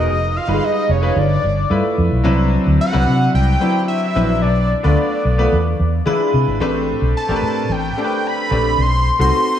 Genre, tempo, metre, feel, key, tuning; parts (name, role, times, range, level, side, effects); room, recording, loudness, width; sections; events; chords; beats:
polished 1980s jazz-funk pop; 110 BPM; 4/4; straight; A4 = 440 Hz
fat analog lead; melody; 0.0-9.6 s; Db5 to C6; -20 LUFS; equal; phaser, diffuse ambient delay
clear grand piano; accompaniment; 0.0-9.6 s; F#3 to Cb5; -19 LUFS; left 1 dB; lush chorus
vintage muted fingered electric bass; bass; 0.0-9.3 s; F1 to E3; -17 LUFS; equal
wet lush hall reverb, RT60 1.6 s, studio ambience; dreamy mix soaked in reverb; -14 LUFS; side -10 dB against mid
0.0-2.3 A section; 2.3-9.6 A section
0.1 Fm7b5; 1.2 G13; 2.3 Cmaj9#11; 4.4 Bm7b5; 5.5 E7b9; 6.6 Am11; 8.8 B7b9
| 0.07 0.62 1.16 1.71 | 2.25 2.80 3.34 3.89 | 4.43 4.98 5.52 6.07 | 6.61 7.16 7.70 8.24 | 8.79 9.33